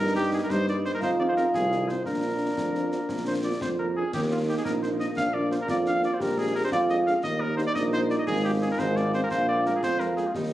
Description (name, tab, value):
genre	military-style march for wind band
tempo	116 BPM (dotted quarters)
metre	6/8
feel	straight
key	unclear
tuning	A4 = 440 Hz
part	warm cornet	melody	0.0-10.5 s	Eb4 to F5	-30 LUFS	equal	none
part	warm euphonium	second line	0.0-10.5 s	D4 to G4	-28 LUFS	right 2 dB	none
part	mellow trombone section	sustained chords	0.0-10.5 s	F3 to F4	-35 LUFS	equal	none
part	warm tuba	bass	0.0-10.5 s	Ab1 to G2	-28 LUFS	right 1 dB	none
part	dark French horn section	accompaniment	0.2-10.2 s	Ab3 to Ab4	-36 LUFS	left 4 dB	none
part	concert snare drum, concert bass drum and clash cymbals	drums	0.5-10.5 s	none	-38 LUFS	left 2 dB	none
room	moderate large studio reverb, RT60 1.2 s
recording	recorded on a phone in the room, club reverb, compression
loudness	-23 LUFS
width	side -14 dB against mid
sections	0.0-10.5 A section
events	none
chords	0.0 Eb/G; 1.0 Fm7; 2.1 Bb; 4.1 Eb5; 5.2 Bb; 6.2 Bb7; 7.2 Eb; 8.3 Fm/Ab; 9.3 Bb5